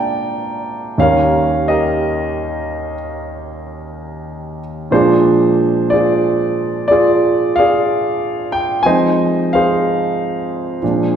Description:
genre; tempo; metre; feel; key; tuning
solo jazz; 61 BPM; 4/4; swing 69% on 8ths; Bb mixolydian; A4 = 440 Hz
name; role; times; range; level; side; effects
warm concert grand piano; solo; 0.0-11.2 s; Eb2 to Bb5; -14 LUFS; right 1 dB; none
room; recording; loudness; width
wet scoring stage reverb, RT60 1.8 s; recorded in a church or concert hall; -13 LUFS; side -8 dB against mid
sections
0.0-11.2 A section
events
none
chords
0.0 Bb7; 1.0 Eb7; 4.9 Bb7; 8.9 Fm7

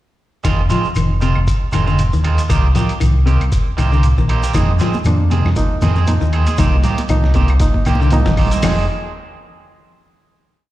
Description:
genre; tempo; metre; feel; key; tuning
afrobeat; 118 BPM; 4/4; swing 56% on 16ths; F dorian; A4 = 440 Hz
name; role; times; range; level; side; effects
electric guitar at the edge of break-up; stabs; 0.4-8.8 s; Eb3 to Ab4; -23 LUFS; right 5 dB; tape echo, slapback echo
lo-fi sampler-style drum kit; drums; 0.4-8.8 s; hi-hat, kick drum, snare drum; -20 LUFS; equal; none
claves; percussion; 0.4-8.8 s; none; -34 LUFS; left 3 dB; slapback echo
shekere; percussion; 0.4-8.8 s; none; -25 LUFS; equal; slapback echo
semi-hollow electric guitar; arpeggios; 0.5-8.8 s; C3 to F3; -22 LUFS; left 4 dB; lush chorus
fingered electric bass; bass; 0.5-8.9 s; F1 to F2; -15 LUFS; equal; none
barky reed electric piano; accompaniment; 4.5-8.9 s; F3 to G5; -23 LUFS; right 2 dB; spring reverb, slapback echo
congas; percussion; 4.6-8.8 s; none; -26 LUFS; right 3 dB; slapback echo
room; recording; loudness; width
digital ambience; live gig heard through the venue's PA, recital hall reverb; -13 LUFS; side -15 dB against mid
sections
0.5-8.6 groove; 8.6-10.7 final chord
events
reed electric piano fill 7.6-8.6; drum fill 7.9-8.6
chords
0.5 Fm7; 2.5 Cm7; 4.5 Fm7; 6.6 Cm7; 8.6 Fm7

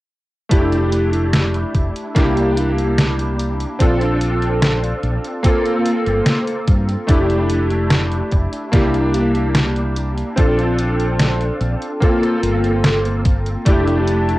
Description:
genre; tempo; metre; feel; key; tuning
vaporwave; 73 BPM; 4/4; straight; F major; A4 = 440 Hz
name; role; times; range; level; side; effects
clear electric grand piano; accompaniment; 0.5-14.4 s; A3 to A4; -18 LUFS; equal; ensemble chorus, vintage 12-bit sampler grit, cassette tape, analog delay
mellow fretless electric bass; bass; 0.5-14.4 s; F1 to G2; -20 LUFS; equal; tube saturation
detuned 8-bit digital drum machine; drums; 0.5-14.4 s; hi-hat, snare drum; -19 LUFS; equal; none
electronic kick drum; drums; 0.5-13.8 s; none; -15 LUFS; equal; none
lush unison pad; sustained chords; 13.7-14.4 s; G4 to A5; -24 LUFS; left 2 dB; chorus, cassette tape
room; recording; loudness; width
moderate small room reverb, RT60 0.5 s; home recording on cassette; -15 LUFS; side -18 dB against mid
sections
0.5-14.4 A section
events
none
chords
0.5 Fmaj13; 2.2 C9; 3.8 Bbmaj9; 5.4 Gm11; 7.1 Fmaj13; 8.7 C9; 10.4 Bbmaj9; 12.0 Gm11; 13.7 Fmaj13

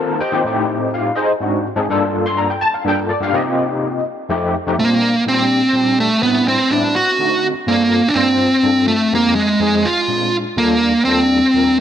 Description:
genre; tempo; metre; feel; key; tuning
jazz; 83 BPM (dotted quarters); 6/8; straight; Bb major; A4 = 440 Hz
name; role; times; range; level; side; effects
overdriven tine electric piano; accompaniment; 0.0-11.8 s; Eb2 to C6; -18 LUFS; left 2 dB; medium tremolo, ensemble chorus
dark smooth lead guitar; melody; 4.8-11.8 s; Ab3 to F#4; -13 LUFS; right 1 dB; overdrive, tape echo
room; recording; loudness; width
moderate plate reverb, RT60 3.2 s; none; -14 LUFS; side -9 dB against mid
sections
0.0-4.8 A section; 4.8-11.8 B section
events
none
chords
0.5 Am7b5; 1.2 Ab7#11; 1.9 Gm9; 3.3 Cm7; 4.1 F9; 4.8 Bb69; 6.2 Am11; 6.9 D7b9; 7.7 Gm11; 9.1 Fm9; 9.8 Bb9; 10.6 Ebmaj9#11

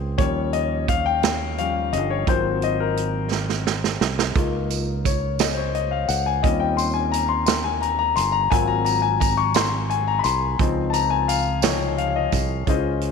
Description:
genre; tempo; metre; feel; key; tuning
slow gospel; 58 BPM (dotted quarters); 6/8; straight; Db major; A4 = 440 Hz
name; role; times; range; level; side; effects
clear concert grand piano; accompaniment; 0.0-13.1 s; C3 to Db6; -22 LUFS; left 10 dB; none
fingered electric bass; bass; 0.0-13.1 s; G1 to Eb2; -26 LUFS; right 2 dB; none
natural country drum kit; drums; 0.2-13.1 s; hi-hat, kick drum, snare drum; -24 LUFS; right 6 dB; none
tambourine; percussion; 4.7-12.6 s; none; -33 LUFS; right 17 dB; none
room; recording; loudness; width
moderate echo chamber reverb, RT60 2.2 s; 1960s-style stereo with parts hard left and right; -19 LUFS; side -5 dB against mid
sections
0.0-12.7 A section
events
grand piano solo 0.0-12.7; drum fill 3.3-4.4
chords
0.2 Eb9; 2.3 Ab13; 4.4 Db6; 6.4 Eb13; 8.5 Ab13; 10.6 Dbmaj9

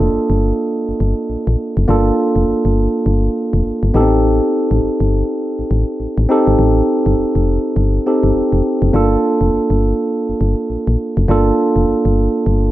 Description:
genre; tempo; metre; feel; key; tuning
R&B, new jack swing; 102 BPM; 4/4; swing 60% on 16ths; G minor; A4 = 440 Hz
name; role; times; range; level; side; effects
tine electric piano; accompaniment; 0.0-12.7 s; Bb3 to A4; -15 LUFS; right 1 dB; none
solid FM bass; bass; 0.0-12.7 s; F1 to Bb1; -15 LUFS; equal; none
room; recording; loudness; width
moderate plate reverb, RT60 3.0 s; none; -13 LUFS; side -15 dB against mid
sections
0.0-12.7 A section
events
none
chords
0.0 Gm7; 3.9 Am7b5; 8.9 Gm7

